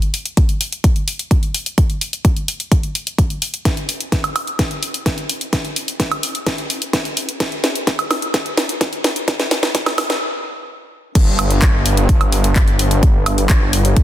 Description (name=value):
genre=EDM, festival progressive house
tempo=128 BPM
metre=4/4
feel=straight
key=unclear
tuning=A4 = 436 Hz
part: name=house drum kit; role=drums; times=0.0-14.0 s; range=crash cymbal, handclaps, hi-hat, snare drum, woodblock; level=-19 LUFS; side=equal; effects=small room ambience
part: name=electronic kick drum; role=drums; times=0.4-14.0 s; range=none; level=-15 LUFS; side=equal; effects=small room ambience
part: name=wide detuned saw bass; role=bass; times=11.2-14.0 s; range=G1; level=-16 LUFS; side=equal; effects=chorus, sidechain pumping
room=light reverb, digital ambience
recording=dense, heavily limited modern master, high-pass filter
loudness=-15 LUFS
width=side -12 dB against mid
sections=0.0-11.2 A section; 11.2-14.0 B section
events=build-up 0.0-11.2; filter sweep 0.0-11.2; drum fill 3.7-10.2; stop 10.2-11.2; drop 11.2-14.0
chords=none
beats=0.37 0.84 1.31 | 1.78 2.25 2.72 3.19 | 3.65 4.12 4.59 5.06 | 5.53 6.00 6.47 6.93 | 7.40 7.87 8.34 8.81 | 9.28 9.75 10.22 10.69 | 11.15 11.62 12.09 12.56 | 13.03 13.50 13.97